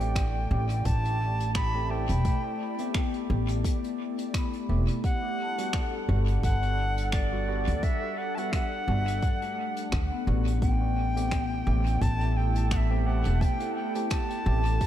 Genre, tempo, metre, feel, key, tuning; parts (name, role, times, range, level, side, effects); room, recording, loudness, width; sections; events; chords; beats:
ambient dub; 86 BPM; 4/4; swing 55% on 16ths; A4 = 440 Hz
bright reedy wooden flute; melody; 0.0-14.9 s; D5 to B5; -33 LUFS; equal; dub echo
warbly tape-like pad; sustained chords; 0.0-14.9 s; G3 to F#5; -36 LUFS; right 1 dB; chorus, built-in reverb
vibraphone with medium mallets; arpeggios; 0.0-14.9 s; A3 to B5; -37 LUFS; left 8 dB; tape echo
overdriven tine electric piano; stabs; 0.0-14.6 s; G3 to G4; -39 LUFS; right 3 dB; wide subtle chorus, dub echo
upright bass; bass; 0.0-14.8 s; E1 to D2; -26 LUFS; equal
vintage brush drum kit; drums; 0.0-14.9 s; finger snaps, hi-hat; -41 LUFS; equal; dub echo
electronic kick drum; drums; 0.2-14.9 s; -28 LUFS; equal
light reverb, studio reverb; -25 LUFS; side -11 dB against mid
0.0-14.9 A section
0.0 Am7; 5.0 Gmaj7; 10.6 Am7
0.16 0.85 1.55 | 2.25 2.95 3.65 4.34 | 5.04 5.74 6.44 7.13 | 7.83 8.53 9.23 9.93 | 10.62 11.32 12.02 12.71 | 13.41 14.11 14.81